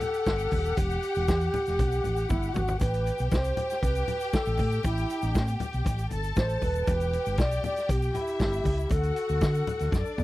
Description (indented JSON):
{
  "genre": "disco",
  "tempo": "118 BPM",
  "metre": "4/4",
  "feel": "straight",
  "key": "E minor",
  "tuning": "A4 = 442 Hz",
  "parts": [
    { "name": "reedy wooden-headed alto flute", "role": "melody", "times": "0.0-10.2 s", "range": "E4 to D5", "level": "-30 LUFS", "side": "equal", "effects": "none" },
    { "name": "rich studio string section", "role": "second line", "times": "0.0-10.2 s", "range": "D4 to A5", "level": "-35 LUFS", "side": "left 3 dB", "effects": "none" },
    { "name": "vintage drum kit", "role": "drums", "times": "0.0-10.2 s", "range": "hi-hat, kick drum, snare drum, toms", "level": "-29 LUFS", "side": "equal", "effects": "none" },
    { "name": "congas", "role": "percussion", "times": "0.0-10.2 s", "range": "none", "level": "-38 LUFS", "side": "left 3 dB", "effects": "none" },
    { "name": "tube shaker", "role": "percussion", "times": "0.0-10.2 s", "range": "none", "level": "-52 LUFS", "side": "right 13 dB", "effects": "none" },
    { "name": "hollow-body short-scale fingered electric bass", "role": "bass", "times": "0.3-10.2 s", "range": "D#1 to D3", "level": "-29 LUFS", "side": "equal", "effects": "none" }
  ],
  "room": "little or no reverb",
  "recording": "dry, close 1970s-style studio recording",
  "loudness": "-25 LUFS",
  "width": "side -16 dB against mid",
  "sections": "0.0-10.2 A section",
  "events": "drum fill 2.3-2.8, 9.9-10.2",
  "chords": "0.0 Em; 2.8 A7sus2; 6.9 Em; 8.9 D"
}